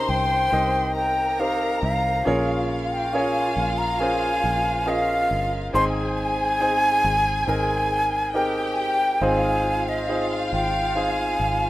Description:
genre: pop ballad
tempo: 69 BPM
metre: 4/4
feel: straight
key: Ab major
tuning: A4 = 441 Hz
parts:
  - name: breathy mellow silver concert flute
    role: melody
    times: 0.0-11.7 s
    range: Eb5 to C6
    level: -23 LUFS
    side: equal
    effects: none
  - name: warm studio violin section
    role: second line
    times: 0.0-11.7 s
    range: F4 to C6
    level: -28 LUFS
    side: left 1 dB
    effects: none
  - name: warm grand piano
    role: accompaniment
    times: 0.0-11.7 s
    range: Ab2 to Eb5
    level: -26 LUFS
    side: equal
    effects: none
  - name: fingered electric bass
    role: bass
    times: 0.0-11.7 s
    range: G1 to C2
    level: -29 LUFS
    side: equal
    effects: none
room: studio reverb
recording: rough home demo mix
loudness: -20 LUFS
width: side -16 dB against mid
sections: 0.0-11.7 A section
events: none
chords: 0.0 Cm7; 2.3 Bbm7; 5.7 Abmaj7; 9.2 Fm7/Ab

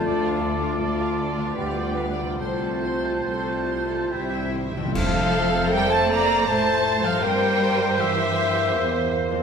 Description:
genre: classical, slow romantic movement for symphony orchestra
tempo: 68-82 BPM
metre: 3/4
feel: rubato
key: F major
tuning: A4 = 440 Hz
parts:
  - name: rich studio violin section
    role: melody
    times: 0.0-9.1 s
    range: D5 to C6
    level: -29 LUFS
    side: equal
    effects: none
  - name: bright clarinet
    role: second line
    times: 0.0-9.4 s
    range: E4 to C5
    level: -30 LUFS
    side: left 1 dB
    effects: none
  - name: mellow hollow silver concert flute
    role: second line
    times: 0.0-9.1 s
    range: E5 to Bb5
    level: -31 LUFS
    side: left 1 dB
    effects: none
  - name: rich studio violin section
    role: second line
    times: 0.0-9.1 s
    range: F4 to E5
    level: -30 LUFS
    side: equal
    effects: none
  - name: warm oboe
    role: second line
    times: 0.0-9.1 s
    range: C5 to Bb5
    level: -30 LUFS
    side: right 1 dB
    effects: none
  - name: dark bassoon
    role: accompaniment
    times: 0.0-9.4 s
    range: A3 to C4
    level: -31 LUFS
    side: left 1 dB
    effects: none
  - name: rich studio viola section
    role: accompaniment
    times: 0.0-9.4 s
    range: D4 to C5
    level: -30 LUFS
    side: right 2 dB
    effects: none
  - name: dark French horn section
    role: sustained chords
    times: 0.0-7.5 s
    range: G3 to F4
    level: -31 LUFS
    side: left 2 dB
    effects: none
  - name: concert harp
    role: arpeggios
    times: 0.0-9.4 s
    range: F2 to C5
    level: -34 LUFS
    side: left 5 dB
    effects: none
  - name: rich studio cello section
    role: bass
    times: 0.1-9.1 s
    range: C2 to Bb3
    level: -30 LUFS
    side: right 1 dB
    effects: none
  - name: warm studio double bass section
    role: bass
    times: 0.1-9.4 s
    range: C2 to A2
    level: -32 LUFS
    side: right 3 dB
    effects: none
  - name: timpani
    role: percussion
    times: 4.1-6.1 s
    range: F2 to C3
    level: -32 LUFS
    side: equal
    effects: none
  - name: clash cymbals and concert bass drum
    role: percussion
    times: 5.0-6.4 s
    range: none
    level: -32 LUFS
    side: equal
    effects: none
room: wet scoring stage reverb, RT60 1.9 s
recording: minimal, uncompressed stereo recording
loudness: -20 LUFS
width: side -6 dB against mid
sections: 0.0-5.0 A section; 5.0-9.4 B section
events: timpani fill 4.1-5.0; band accent 5.0-5.7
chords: 0.1 Dm; 1.6 G7/D; 2.4 F/C; 4.1 C; 5.0 F; 7.2 C7/G

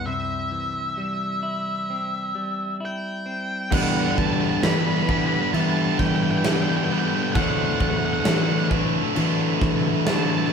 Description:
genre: post-rock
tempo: 66 BPM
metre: 4/4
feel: straight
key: unclear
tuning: A4 = 436 Hz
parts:
  - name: octave-fuzz lead guitar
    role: melody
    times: 0.0-10.5 s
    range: E5 to B5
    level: -28 LUFS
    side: equal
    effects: distortion
  - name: pedal steel guitar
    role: sustained chords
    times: 0.0-10.5 s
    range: G3 to F#5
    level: -37 LUFS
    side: right 1 dB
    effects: none
  - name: clean electric guitar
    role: arpeggios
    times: 0.0-3.7 s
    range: C3 to E4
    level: -31 LUFS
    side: left 1 dB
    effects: none
  - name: fuzz fingered electric bass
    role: bass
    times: 0.0-10.5 s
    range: E2 to E3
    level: -25 LUFS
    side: equal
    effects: overdrive
  - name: distorted electric guitar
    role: riff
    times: 3.7-10.5 s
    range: G2 to D4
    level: -26 LUFS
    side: right 8 dB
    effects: overdrive
  - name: thick fuzz guitar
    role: riff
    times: 3.7-10.5 s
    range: G2 to D4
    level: -25 LUFS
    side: left 6 dB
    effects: distortion
  - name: huge arena drum kit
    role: drums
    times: 3.7-10.3 s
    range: crash cymbal, kick drum, snare drum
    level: -26 LUFS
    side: equal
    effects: none
room: wet large studio reverb, RT60 0.8 s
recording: band playing live in one room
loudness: -20 LUFS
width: side -6 dB against mid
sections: 0.0-3.7 A section; 3.7-10.5 B section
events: break 0.1-3.7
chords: 0.1 C; 3.7 Gmaj7/E; 7.4 D7/E

